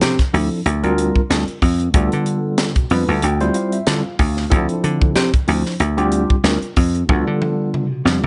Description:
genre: electric jazz fusion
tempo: 93 BPM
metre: 4/4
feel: swing 55% on 16ths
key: unclear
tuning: A4 = 440 Hz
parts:
  - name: tine electric piano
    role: accompaniment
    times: 0.0-8.3 s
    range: F3 to B5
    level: -24 LUFS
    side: equal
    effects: none
  - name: dry thumbed slap bass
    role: bass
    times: 0.0-8.3 s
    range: D2 to D3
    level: -20 LUFS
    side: equal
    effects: none
  - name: crisp fusion drum kit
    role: drums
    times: 0.0-8.3 s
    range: hi-hat, kick drum, snare drum, toms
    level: -22 LUFS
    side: equal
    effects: none
room: light reverb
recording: nothing above 10.6 kHz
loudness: -18 LUFS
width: mono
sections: 0.0-8.3 A section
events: tine electric piano fill 2.6-4.5; drum fill 7.1-8.3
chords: 0.0 Dm9; 0.7 C7sus4/D; 1.9 G7/D; 3.2 Fmaj9/D; 4.5 Dm9; 5.8 C7sus4/D; 7.1 G7/D

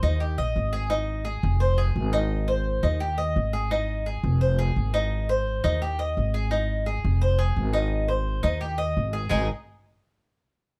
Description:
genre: latin, Cuban son and guajira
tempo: 171 BPM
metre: 4/4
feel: straight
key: Ab major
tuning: A4 = 440 Hz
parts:
  - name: Cuban tres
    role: arpeggios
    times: 0.0-9.5 s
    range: Ab3 to Eb5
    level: -30 LUFS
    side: equal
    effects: none
  - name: upright bass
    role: bass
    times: 0.0-9.5 s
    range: F1 to Eb2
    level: -27 LUFS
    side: equal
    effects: none
room: little or no reverb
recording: dark, warm production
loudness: -25 LUFS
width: mono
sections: 0.0-3.7 A section; 3.7-9.3 B section; 9.3-10.7 C section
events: none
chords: 0.2 Eb; 0.9 Ab5; 1.6 Fm7; 2.3 Ab; 3.0 Eb; 3.7 Ab5; 4.4 Fm7; 5.1 Ab; 5.8 Eb; 6.5 Ab5; 7.2 Fm7; 7.9 Ab; 8.6 Eb; 9.3 Ab5

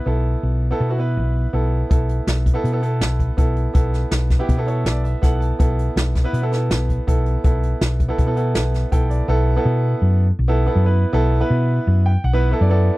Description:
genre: progressive instrumental, band music in an uneven meter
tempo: 163 BPM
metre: 5/4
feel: straight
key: unclear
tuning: A4 = 440 Hz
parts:
  - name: clear grand piano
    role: accompaniment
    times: 0.0-13.0 s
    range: B3 to A5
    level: -23 LUFS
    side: right 2 dB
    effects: none
  - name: hollow-body short-scale fingered electric bass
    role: bass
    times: 0.1-12.9 s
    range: B1 to B2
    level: -18 LUFS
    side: equal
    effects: none
  - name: jazz brush drum kit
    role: drums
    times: 1.9-9.2 s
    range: hi-hat, kick drum, snare drum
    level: -19 LUFS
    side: equal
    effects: none
room: little or no reverb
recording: dry, close 1970s-style studio recording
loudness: -16 LUFS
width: side -19 dB against mid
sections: 0.0-9.3 A section; 9.3-13.0 B section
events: grand piano fill 4.5-5.6, 8.7-9.3, 11.9-13.0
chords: 0.0 B5; 1.9 N.C.; 9.3 B5

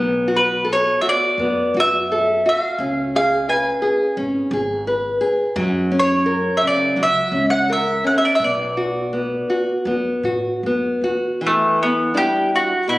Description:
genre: fado-style ballad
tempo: 76-88 BPM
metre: 4/4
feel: rubato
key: B minor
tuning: A4 = 436 Hz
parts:
  - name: nylon-string guitar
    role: accompaniment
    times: 0.0-13.0 s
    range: B2 to B4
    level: -20 LUFS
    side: left 1 dB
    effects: none
  - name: upright bass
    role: bass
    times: 0.0-11.4 s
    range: G#1 to A2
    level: -28 LUFS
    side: equal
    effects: none
  - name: mandolin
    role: melody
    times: 0.4-13.0 s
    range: A3 to G#5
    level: -17 LUFS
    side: equal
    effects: none
room: moderate scoring stage reverb, RT60 1.6 s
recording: recorded on a phone in the room, club reverb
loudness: -16 LUFS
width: side -18 dB against mid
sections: 0.0-11.4 A section; 11.4-13.0 B section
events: none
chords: 0.0 Bm7; 2.8 C#5; 5.6 F#; 8.4 Bm7; 11.4 Em7

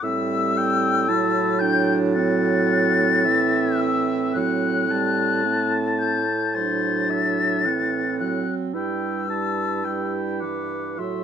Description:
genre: classical, slow romantic movement for wind quintet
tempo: 55 BPM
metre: 4/4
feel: rubato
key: unclear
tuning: A4 = 440 Hz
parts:
  - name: mellow hollow silver concert flute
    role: melody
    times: 0.0-11.2 s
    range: C6 to A6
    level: -24 LUFS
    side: left 7 dB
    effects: none
  - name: warm oboe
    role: second line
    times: 0.0-11.2 s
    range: C5 to A5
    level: -29 LUFS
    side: left 2 dB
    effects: none
  - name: clear clarinet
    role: accompaniment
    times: 0.0-11.2 s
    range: C4 to F#4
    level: -27 LUFS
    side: right 8 dB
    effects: none
  - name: mellow French horn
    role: accompaniment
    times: 0.0-11.2 s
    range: E3 to A3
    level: -28 LUFS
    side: right 3 dB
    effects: none
  - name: warm bassoon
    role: bass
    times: 0.0-11.2 s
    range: G2 to A2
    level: -26 LUFS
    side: right 2 dB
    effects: none
room: light reverb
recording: none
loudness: -19 LUFS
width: side -8 dB against mid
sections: 0.0-11.2 A section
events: none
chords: 0.0 Am7; 8.7 Em/G

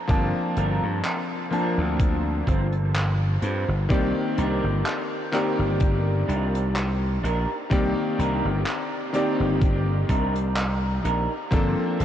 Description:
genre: vaporwave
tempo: 63 BPM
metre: 4/4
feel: swing 54% on 16ths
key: C dorian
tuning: A4 = 440 Hz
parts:
  - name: bright electric grand piano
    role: accompaniment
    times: 0.0-12.0 s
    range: Eb3 to A5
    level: -26 LUFS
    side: left 1 dB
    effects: lush chorus, vintage 12-bit sampler grit, diffuse ambient delay
  - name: slap bass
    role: bass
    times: 0.1-12.0 s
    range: G1 to G2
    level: -24 LUFS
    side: equal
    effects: tube saturation
  - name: damped 70s drum kit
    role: drums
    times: 0.1-12.0 s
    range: handclaps, hi-hat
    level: -34 LUFS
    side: equal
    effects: vintage 12-bit sampler grit, small room reverb
  - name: electronic kick drum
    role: drums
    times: 0.1-11.7 s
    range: none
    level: -23 LUFS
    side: equal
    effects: vintage 12-bit sampler grit, small room reverb
  - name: electric guitar through a small old amp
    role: riff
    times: 0.6-12.0 s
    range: Bb3 to C5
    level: -32 LUFS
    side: right 2 dB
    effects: lush chorus, diffuse ambient delay
room: moderate huge ambient reverb, RT60 9.4 s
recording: dreamy mix soaked in reverb, cassette tape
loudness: -21 LUFS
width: side -10 dB against mid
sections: 0.0-12.0 A section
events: none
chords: 0.0 Gm11; 3.9 Cm9; 11.5 Gm11

